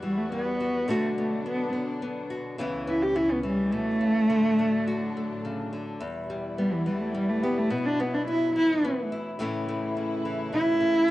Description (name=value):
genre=acoustic folk duo or small band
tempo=106 BPM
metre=3/4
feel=straight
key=unclear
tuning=A4 = 440 Hz
part: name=dark cello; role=melody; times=0.0-11.1 s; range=E3 to G4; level=-24 LUFS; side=equal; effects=cassette tape, plate reverb
part: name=nylon-string guitar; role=accompaniment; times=0.0-11.1 s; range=E2 to G4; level=-32 LUFS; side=left 2 dB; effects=cassette tape, plate reverb
part: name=warm chamber string section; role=sustained chords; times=0.0-11.1 s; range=C#2 to F#4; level=-37 LUFS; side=equal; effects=cassette tape, plate reverb
room=wet booth ambience, RT60 0.2 s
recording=home recording on cassette, nothing above 11.0 kHz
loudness=-24 LUFS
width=side -16 dB against mid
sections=0.0-11.1 A section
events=cello solo 0.0-11.1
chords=0.0 Emadd9; 0.9 Bm; 2.6 Aadd9/C#; 4.3 D; 6.0 Em; 7.7 Bsus4; 9.4 A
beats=0.31 | 0.88 1.45 2.02 | 2.59 3.16 3.73 | 4.29 4.86 5.43 | 6.00 6.57 7.13 | 7.70 8.27 8.83 | 9.40 9.96 10.53 | 11.09